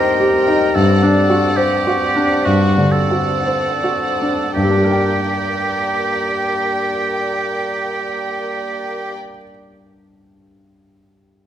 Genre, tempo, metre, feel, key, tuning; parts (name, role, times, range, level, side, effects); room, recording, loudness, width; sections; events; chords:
classical, romantic movement for piano and orchestra; 52-75 BPM; 4/4; rubato; G minor; A4 = 437 Hz
clear grand piano; melody; 0.0-11.5 s; G2 to G5; -17 LUFS; left 1 dB
rich chamber violin section; melody; 0.0-9.1 s; F#5 to G5; -28 LUFS; left 2 dB
clear oboe; second line; 0.0-9.1 s; F#4 to Bb4; -20 LUFS; right 3 dB
warm chamber violin section; second line; 0.0-9.1 s; Bb3 to Eb5; -25 LUFS; left 1 dB
wet recital hall reverb, RT60 1.5 s; -15 LUFS; side -10 dB against mid
0.0-4.5 A section; 4.5-8.6 B section
slowing down 0.0-4.5
0.0 Cm/G; 0.8 D7/G; 4.5 Gm